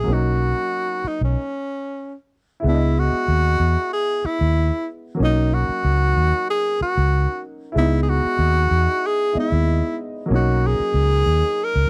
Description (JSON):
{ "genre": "lush 1970s-style soul", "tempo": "94 BPM", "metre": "4/4", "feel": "swing 54% on 16ths", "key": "C# dorian", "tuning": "A4 = 439 Hz", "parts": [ { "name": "warm tenor saxophone", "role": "melody", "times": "0.0-11.9 s", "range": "C#4 to A#4", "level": "-24 LUFS", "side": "equal", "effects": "none" }, { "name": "warm baby grand piano", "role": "accompaniment", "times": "0.0-11.9 s", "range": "F#3 to D#5", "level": "-29 LUFS", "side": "equal", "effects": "none" }, { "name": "vintage muted fingered electric bass", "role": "bass", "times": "0.0-11.9 s", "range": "B1 to E2", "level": "-21 LUFS", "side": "equal", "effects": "none" } ], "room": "little or no reverb", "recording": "dry, close 1970s-style studio recording", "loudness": "-20 LUFS", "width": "mono", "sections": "0.0-2.6 A section; 2.6-11.9 B section", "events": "stop 1.4-2.6", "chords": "0.1 Bmaj9; 2.6 C#m7; 5.2 Bmaj7; 7.8 C#m7; 10.3 Bmaj7", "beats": "| 0.09 0.73 1.37 2.00 | 2.64 3.28 3.92 4.56 | 5.20 5.83 6.47 7.11 | 7.75 8.39 9.03 9.66 | 10.30 10.94 11.58" }